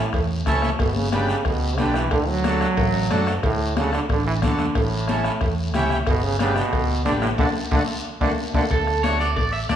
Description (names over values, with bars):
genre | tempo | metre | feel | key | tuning
latin, cumbia | 182 BPM | 4/4 | straight | D major | A4 = 440 Hz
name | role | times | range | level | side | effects
bright trombone | second line | 0.0-8.6 s | A2 to F#3 | -25 LUFS | right 3 dB | none
accordion | accompaniment | 0.0-9.8 s | A3 to B4 | -27 LUFS | equal | none
fingered electric bass | bass | 0.1-9.8 s | G1 to F#2 | -25 LUFS | equal | none
bombo | percussion | 0.1-9.8 s | none | -27 LUFS | left 2 dB | none
congas | percussion | 0.1-9.8 s | none | -30 LUFS | left 5 dB | none
cowbell and timbales | percussion | 0.1-9.8 s | none | -31 LUFS | right 3 dB | none
guiro | percussion | 0.1-9.8 s | none | -35 LUFS | left 3 dB | none
electric guitar at the edge of break-up | melody | 8.7-9.7 s | A4 to E5 | -22 LUFS | right 3 dB | spring reverb, slapback echo
room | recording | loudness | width
moderate large studio reverb, RT60 1.4 s | small room ambience | -19 LUFS | side -9 dB against mid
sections
0.0-8.7 A section; 8.7-9.8 B section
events
trombone solo 0.0-8.7; drum fill 2.8-3.4, 7.4-8.7; band accent 7.4-8.7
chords
0.0 A; 0.8 G; 2.1 D; 4.8 A7; 6.1 G; 7.4 D